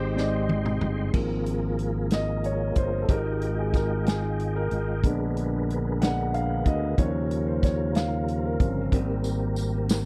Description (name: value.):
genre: slow gospel.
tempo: 62 BPM (dotted quarters).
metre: 6/8.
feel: straight.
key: Ab major.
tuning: A4 = 440 Hz.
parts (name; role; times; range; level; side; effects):
mellow horn section; melody; 0.0-0.5 s; Eb4 to C5; -37 LUFS; equal; tape echo.
dark concert grand piano; accompaniment; 0.0-10.1 s; Ab2 to Gb5; -32 LUFS; equal; none.
tonewheel organ; sustained chords; 0.0-10.1 s; Db3 to C6; -35 LUFS; equal; slow rotary speaker, overdrive, chorus vibrato.
modern bright fingered electric bass; bass; 0.0-10.1 s; G1 to Eb2; -30 LUFS; equal; none.
natural country drum kit; drums; 0.2-10.1 s; crash cymbal, hi-hat, kick drum, snare drum, toms; -27 LUFS; equal; none.
tambourine; percussion; 9.2-10.1 s; none; -42 LUFS; equal; none.
room: little or no reverb.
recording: dry, close 1970s-style studio recording.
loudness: -26 LUFS.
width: mono.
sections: 0.0-1.1 A section; 1.1-10.1 B section.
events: drum fill 0.2-1.1; grand piano solo 1.1-10.1.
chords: 0.0 Abmaj7; 1.1 Ab69; 3.1 Fm9/Ab; 5.0 Bb7b9; 7.0 Eb13; 8.9 Abmaj9.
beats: 0.17 | 1.15 2.12 | 3.09 4.07 | 5.04 6.01 | 6.98 7.96 | 8.93 9.90.